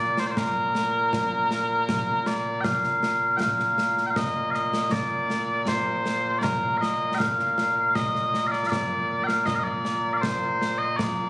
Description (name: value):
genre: scottish traditional, Scottish pipe music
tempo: 79 BPM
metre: 3/4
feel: straight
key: Bb major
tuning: A4 = 436 Hz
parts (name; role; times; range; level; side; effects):
- mellow small bagpipes; melody; 0.0-11.3 s; Bb2 to G5; -23 LUFS; equal; none
- concert snare drum and concert bass drum; drums; 0.2-11.2 s; none; -30 LUFS; equal; none
room: light reverb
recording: recorded on a phone in the room, studio reverb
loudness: -22 LUFS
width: side -23 dB against mid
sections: 0.0-2.7 A section; 2.7-11.3 A section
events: none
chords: none